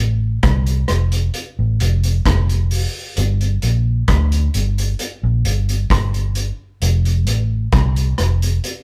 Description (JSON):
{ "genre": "roots reggae", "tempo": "66 BPM", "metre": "4/4", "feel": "straight", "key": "F major", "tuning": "A4 = 440 Hz", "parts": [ { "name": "vintage muted fingered electric bass", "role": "bass", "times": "0.0-8.6 s", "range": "F1 to D2", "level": "-19 LUFS", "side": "equal", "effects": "none" }, { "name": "vintage drum kit", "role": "drums", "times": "0.4-8.8 s", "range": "hi-hat, kick drum, rim click", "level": "-23 LUFS", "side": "equal", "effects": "none" } ], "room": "light reverb", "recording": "band playing live in one room", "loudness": "-18 LUFS", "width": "mono", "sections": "0.0-8.8 A section", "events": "none", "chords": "none" }